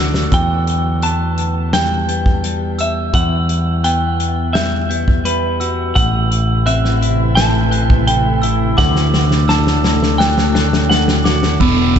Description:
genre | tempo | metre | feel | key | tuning
post-rock | 85 BPM | 4/4 | straight | E minor | A4 = 444 Hz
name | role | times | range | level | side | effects
soft additive organ-like pad | sustained chords | 0.0-0.3, 6.5-12.0 s | C3 to E5 | -23 LUFS | equal | ensemble chorus, built-in reverb
clean electric guitar | arpeggios | 0.0-12.0 s | A2 to F#4 | -22 LUFS | left 3 dB | lush chorus, ping-pong delay
glockenspiel with hard plastic mallets | arpeggios | 0.0-12.0 s | D6 to G6 | -25 LUFS | right 5 dB | ping-pong delay
modern bright picked electric bass | bass | 0.0-12.0 s | E1 to E2 | -18 LUFS | equal | none
loose indie drum kit | drums | 0.1-12.0 s | crash cymbal, hi-hat, kick drum, snare drum | -18 LUFS | equal | none
semi-hollow electric guitar | melody | 0.3-12.0 s | B3 to A5 | -19 LUFS | equal | ping-pong delay
sludgy distorted guitar | riff | 11.6-12.0 s | E2 to E3 | -16 LUFS | right 10 dB | overdrive
room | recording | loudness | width
moderate cathedral reverb, RT60 6.0 s | dreamy mix soaked in reverb, nothing above 7.8 kHz | -13 LUFS | side -8 dB against mid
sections
0.3-11.6 A section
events
drum fill 0.0-0.3, 8.8-11.6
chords
0.3 Emadd9; 6.0 Am; 8.8 D

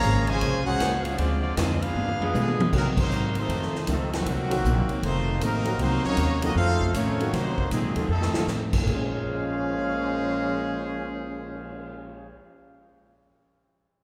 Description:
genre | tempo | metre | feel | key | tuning
jazz, big band swing | 156 BPM | 4/4 | swing 64% on 8ths | Bb minor | A4 = 440 Hz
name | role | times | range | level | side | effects
bright trumpet section | melody | 0.0-12.3 s | Gb3 to Bb5 | -32 LUFS | equal | none
warm trombone section | second line | 0.0-12.3 s | Bb2 to Gb4 | -33 LUFS | equal | none
upright bass | bass | 0.0-12.3 s | F1 to C3 | -31 LUFS | equal | none
swinging big-band drum kit | drums | 0.0-11.9 s | crash cymbal, cymbal swell, hi-hat, kick drum, ride cymbal, snare drum, toms | -33 LUFS | equal | none
hollow-body jazz guitar | accompaniment | 0.1-12.4 s | F2 to C5 | -35 LUFS | equal | none
dark saxophone section | sustained chords | 0.3-2.7 s | F3 to Ab4 | -40 LUFS | equal | none
warm upright piano | accompaniment | 2.7-13.3 s | Bb2 to C7 | -36 LUFS | equal | none
room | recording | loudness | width
wet church reverb, RT60 2.5 s | recorded in a church or concert hall | -25 LUFS | mono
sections
0.0-2.7 A section; 2.7-8.9 B section; 8.9-11.9 C section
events
drum fill 2.0-2.7, 8.1-8.5; band accent 2.9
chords
0.0 Bbm9; 1.2 Dm7b5; 2.0 G7b9; 2.7 Cm7b5; 3.5 F7; 4.3 Cm7b5; 5.0 F7; 5.8 Cm7b5; 6.6 F7; 7.3 Cm7b5; 8.1 F7; 8.9 Bbm9

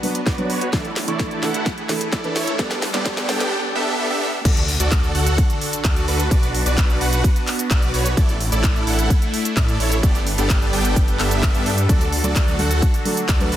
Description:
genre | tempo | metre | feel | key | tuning
EDM, festival progressive house | 129 BPM | 4/4 | straight | D major | A4 = 440 Hz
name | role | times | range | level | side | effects
dark grand piano | accompaniment | 0.0-3.4, 11.9-13.6 s | E3 to C#6 | -26 LUFS | right 2 dB | sidechain pumping, digital delay
supersaw pad | sustained chords | 0.0-13.6 s | D3 to B4 | -28 LUFS | equal | phaser, vintage 12-bit sampler grit, sidechain pumping
house drum kit | drums | 0.0-13.6 s | crash cymbal, handclaps, hi-hat, ride cymbal, shaker, snare drum | -26 LUFS | equal | high-pass filter on snare, high-pass filter on hats, high-pass filter on cymbals, high-pass filter on perc
riser, swell and impact | sound effects | 0.6-6.3 s | none | -34 LUFS | left 1 dB | none
supersaw chords | riff | 0.3-13.6 s | B3 to G5 | -24 LUFS | right 1 dB | sidechain pumping, low-pass filter, digital delay
detuned saw bass | bass | 0.3-13.6 s | G1 to A2 | -23 LUFS | equal | sidechain pumping, high-pass filter
electronic kick drum | drums | 0.3-13.4 s | none | -19 LUFS | equal | none
room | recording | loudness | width
light reverb | dense, heavily limited modern master, high-pass filter | -17 LUFS | side -12 dB against mid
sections
0.0-4.5 A section; 4.5-13.6 B section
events
build-up 0.0-4.5; drum fill 0.0-3.5; filter sweep on supersaw synth 0.0-4.5; drop 4.5-13.6; impact 4.5-6.3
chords
0.0 Bm; 0.7 Asus4; 2.6 Gadd9; 4.5 D; 6.3 Bm; 8.2 Asus4; 10.0 Gadd9; 11.9 D

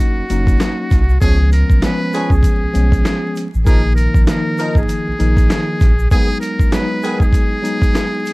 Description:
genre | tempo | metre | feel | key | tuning
hip hop, boom-bap hip-hop | 98 BPM | 4/4 | swing 60% on 16ths | unclear | A4 = 440 Hz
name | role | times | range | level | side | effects
trumpet with metal mute | melody | 0.0-8.3 s | Gb4 to B4 | -22 LUFS | equal | none
mellow tine electric piano | accompaniment | 0.0-8.3 s | Eb3 to Eb4 | -20 LUFS | equal | medium stereo tremolo, cassette tape
warm sub bass | bass | 0.2-6.1 s | Gb1 to Db2 | -15 LUFS | equal | none
dusty soul sampler-style drum kit | drums | 0.3-8.3 s | hi-hat, kick drum, snare drum | -14 LUFS | equal | none
egg shaker | percussion | 0.3-8.3 s | none | -44 LUFS | right 3 dB | none
warm horn section | stabs | 1.2-7.2 s | D#3 to Bb4 | -27 LUFS | right 1 dB | digital delay
room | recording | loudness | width
little or no reverb | dark, warm production, vinyl crackle, lossy compression artefacts | -12 LUFS | side -23 dB against mid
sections
0.0-8.3 A section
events
none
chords
0.0 Ebm7; 1.2 Db7; 3.7 Bbsus4; 6.1 B6

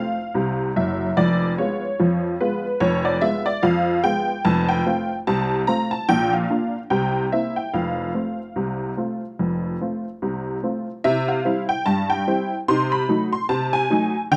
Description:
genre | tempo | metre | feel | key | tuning
ragtime piano | 73 BPM | 2/4 | swing 58% on 16ths | F major, C major from 11.0 s | A4 = 440 Hz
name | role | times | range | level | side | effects
honky-tonk upright piano | solo | 0.0-14.4 s | F1 to C6 | -22 LUFS | equal | none
room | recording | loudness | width
small room ambience | dry, close 1970s-style studio recording | -22 LUFS | mono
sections
0.0-11.0 A section; 11.0-14.4 B section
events
none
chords
0.0 F; 1.2 Fdim; 4.4 F; 6.1 Bb; 6.9 C7; 7.7 F; 11.0 C; 12.7 Cdim7

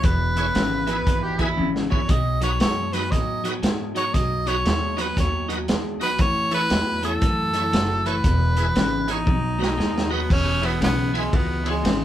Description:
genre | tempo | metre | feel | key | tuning
electric blues shuffle | 117 BPM | 4/4 | swing 63% on 8ths | E major | A4 = 440 Hz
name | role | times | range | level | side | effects
bright tenor saxophone | melody | 0.0-12.0 s | G#3 to D#5 | -25 LUFS | equal | none
electric guitar through a small old amp | riff | 0.0-12.0 s | E2 to G#3 | -27 LUFS | left 1 dB | none
upright bass | bass | 0.0-12.0 s | E1 to A2 | -27 LUFS | equal | none
vintage drum kit | drums | 0.0-12.0 s | crash cymbal, hi-hat, kick drum, ride cymbal, snare drum, toms | -24 LUFS | equal | none
bright tonewheel organ | accompaniment | 0.4-11.8 s | D#4 to C#5 | -29 LUFS | right 4 dB | slow rotary speaker, overdrive, chorus vibrato
overdriven harmonica | second line | 0.9-1.7 s | E4 to B4 | -27 LUFS | right 2 dB | none
room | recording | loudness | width
moderate studio reverb, RT60 0.5 s | band playing live in one room | -20 LUFS | side -12 dB against mid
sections
0.0-10.3 A section; 10.3-12.0 A section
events
drum fill 1.6-2.1, 9.3-10.3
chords
0.0 E; 2.1 B; 6.2 A; 8.2 E; 9.3 B; 10.3 E

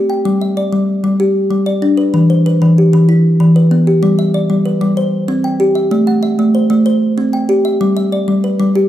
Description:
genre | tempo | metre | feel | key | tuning
southern african traditional | 127 BPM (dotted quarters) | 12/8 | straight | G major | A4 = 439 Hz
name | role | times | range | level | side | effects
kalimba | solo | 0.0-8.9 s | E3 to G5 | -10 LUFS | equal | none
room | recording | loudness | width
moderate large studio reverb, RT60 1.2 s | band playing live in one room | -10 LUFS | side -12 dB against mid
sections
0.3-8.9 A section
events
none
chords
0.3 G5; 2.1 Em; 4.0 G; 5.0 C; 5.9 Am; 6.9 C; 7.8 G

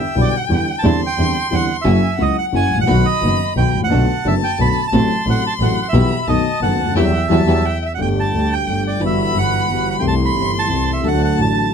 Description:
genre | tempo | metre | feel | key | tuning
tango | 176 BPM | 3/4 | rubato | E minor, G major from 8.0 s | A4 = 440 Hz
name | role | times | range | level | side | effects
bandoneon | melody | 0.0-11.7 s | D5 to B5 | -22 LUFS | right 8 dB | none
dark violin | second line | 0.0-11.7 s | E5 to C6 | -24 LUFS | left 6 dB | none
dark concert grand piano | accompaniment | 0.1-11.7 s | F#1 to G4 | -19 LUFS | left 3 dB | none
dark studio string section | stabs | 0.2-11.7 s | G3 to A4 | -25 LUFS | left 1 dB | none
clear double bass | bass | 0.2-11.7 s | F#1 to E2 | -19 LUFS | right 1 dB | none
room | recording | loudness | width
little or no reverb | close, detailed microphones | -14 LUFS | side -7 dB against mid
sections
0.0-8.0 A section; 8.0-11.7 B section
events
band accent 7.0-8.0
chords
0.0 Em7; 0.8 Cadd9/E; 1.9 F#7; 2.9 B; 3.9 Bm7; 4.9 F#dim/A; 5.9 Em/B; 6.3 B7; 7.0 Emadd9; 8.0 Gsus2; 9.0 Emadd9/G; 10.0 C6; 11.0 D

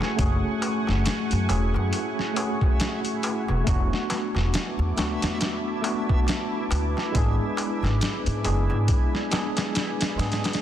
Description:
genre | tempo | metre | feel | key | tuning
trip hop | 69 BPM | 4/4 | swing 58% on 16ths | unclear | A4 = 440 Hz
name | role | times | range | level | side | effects
tine electric piano | accompaniment | 0.0-10.6 s | G#3 to G#4 | -29 LUFS | equal | overdrive, fast stereo tremolo, harmonic tremolo, vintage 12-bit sampler grit, tape echo
deep dark ambient pad | sustained chords | 0.0-10.6 s | A3 to D6 | -32 LUFS | left 1 dB | chorus, built-in reverb
boom bap sampler-style drum kit | drums | 0.0-10.6 s | hi-hat, kick drum, snare drum | -26 LUFS | equal | studio reverb
darbuka | percussion | 0.0-10.6 s | none | -36 LUFS | left 2 dB | none
backwards swelling texture | texture | 0.0-10.6 s | E4 | -37 LUFS | right 2 dB | built-in reverb
upright bass | bass | 0.2-10.4 s | E1 to G#2 | -25 LUFS | equal | none
room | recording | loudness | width
little or no reverb | dense, heavily limited modern master | -22 LUFS | side -11 dB against mid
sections
0.0-10.6 A section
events
none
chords
0.0 F#madd9; 3.7 E7sus4; 7.1 G#dim

